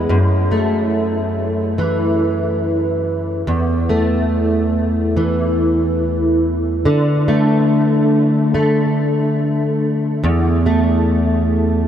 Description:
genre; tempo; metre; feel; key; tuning
pop; 71 BPM; 4/4; straight; unclear; A4 = 440 Hz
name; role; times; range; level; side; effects
fingerpicked plugged-in steel-string acoustic guitar; solo; 0.0-11.9 s; E2 to E4; -14 LUFS; equal; ensemble chorus, analog delay
room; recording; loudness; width
wet huge ambient reverb, RT60 9.3 s; dreamy mix soaked in reverb; -14 LUFS; side -9 dB against mid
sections
0.1-11.9 A section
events
none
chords
0.1 F#m7; 3.5 Esus4; 6.9 D5; 10.2 Esus4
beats
| 0.09 0.94 1.78 2.62 | 3.47 4.32 5.16 6.01 | 6.85 7.70 8.54 9.39 | 10.23 11.08

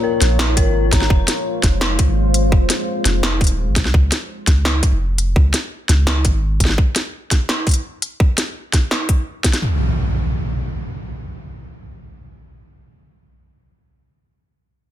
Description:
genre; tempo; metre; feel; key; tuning
half-time drum and bass; 169 BPM; 4/4; half-time; unclear; A4 = 440 Hz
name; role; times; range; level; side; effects
deep dark ambient pad; sustained chords; 0.0-3.9 s; Ab3 to Db5; -23 LUFS; left 1 dB; chorus, built-in reverb, sidechain pumping
dark detuned synth bell; arpeggios; 0.0-1.1 s; F4 to Bb5; -23 LUFS; left 5 dB; chorus, ping-pong delay
long sustained 808-style bass; bass; 0.2-6.8 s; Eb1 to Db2; -17 LUFS; equal; none
industrial drum kit; drums; 0.2-9.6 s; hi-hat, snare drum; -20 LUFS; equal; studio reverb
electronic kick drum; drums; 0.6-9.5 s; none; -15 LUFS; equal; studio reverb
impact; sound effects; 9.6-13.4 s; none; -22 LUFS; equal; none
room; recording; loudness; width
little or no reverb; dense, heavily limited modern master; -15 LUFS; side -12 dB against mid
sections
0.0-9.6 A section; 9.6-12.5 B section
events
none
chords
0.0 Bbm; 1.1 Fm; 3.9 Db; 6.8 N.C.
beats
0.04 0.39 0.74 | 1.10 1.46 1.81 2.17 | 2.52 2.88 3.23 3.58 | 3.94 4.29 4.65 5.00 | 5.36 5.71 6.07 6.42 | 6.78 7.13 7.49 7.84 | 8.20 8.55 8.91 9.27 | 9.62 9.97 10.33 10.69 | 11.04 11.40 11.75 12.11

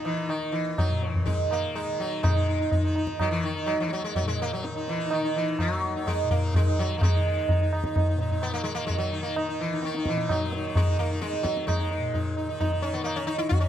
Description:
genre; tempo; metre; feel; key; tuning
indian classical, Hindustani; 127 BPM; 5/4; straight; Eb raga bhairavi; A4 = 440 Hz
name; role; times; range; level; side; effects
sitar; melody; 0.0-13.7 s; Eb3 to Gb4; -28 LUFS; right 1 dB; none
tanpura; drone; 0.0-13.7 s; Eb2 to Eb3; -36 LUFS; left 2 dB; none
tabla; percussion; 0.1-13.7 s; none; -26 LUFS; equal; none
room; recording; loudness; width
light reverb; close, detailed microphones; -24 LUFS; side -10 dB against mid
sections
0.0-2.2 A section; 2.2-13.7 B section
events
speeding up 0.0-13.7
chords
none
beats
0.29 0.77 1.26 1.75 | 2.23 2.71 3.20 3.68 4.16 | 4.64 5.12 5.59 6.07 6.54 | 7.01 7.49 7.96 8.43 8.89 | 9.36 9.83 10.29 10.76 11.22 | 11.68 12.14 12.60 13.06 13.52

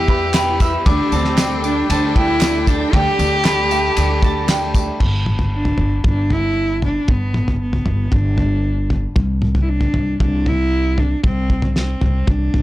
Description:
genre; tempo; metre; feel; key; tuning
indie folk with a building arrangement; 116 BPM; 4/4; straight; unclear; A4 = 441 Hz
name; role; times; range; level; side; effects
warm cello; melody; 0.0-12.6 s; B3 to G4; -20 LUFS; equal; none
glockenspiel with soft plastic mallets; second line; 0.0-4.7 s; A5 to E6; -27 LUFS; left 2 dB; none
clear upright piano; accompaniment; 0.0-5.0 s; D2 to G5; -28 LUFS; right 6 dB; none
picked old ladder-braced acoustic guitar; accompaniment; 0.0-5.0 s; E2 to G4; -29 LUFS; left 8 dB; none
warm studio string section; sustained chords; 0.0-5.0 s; D4 to G5; -29 LUFS; left 2 dB; none
mandolin; arpeggios; 0.0-5.0 s; G5 to E6; -25 LUFS; right 4 dB; none
upright bass; bass; 0.0-12.6 s; G1 to E2; -20 LUFS; equal; none
cloth-damped thuddy drum kit; drums; 0.1-12.6 s; crash cymbal, kick drum, ride cymbal, snare drum, toms; -19 LUFS; equal; none
group handclap; percussion; 0.3-4.6 s; none; -27 LUFS; right 8 dB; none
tambourine; percussion; 0.3-4.9 s; none; -32 LUFS; left 12 dB; none
room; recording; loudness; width
little or no reverb; blown-out, overdriven recording, overdrive; -15 LUFS; side -16 dB against mid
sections
0.0-5.0 A section; 5.0-12.6 B section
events
upright piano fill 4.2-5.0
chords
0.0 Em; 0.9 Dsus4; 5.0 G; 9.2 Csus2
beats
0.35 | 0.87 1.39 1.91 2.42 | 2.94 3.46 3.98 4.49 | 5.01 5.53 6.05 6.57 | 7.09 7.61 8.13 8.65 | 9.17 9.69 10.21 10.72 | 11.24 11.76 12.28

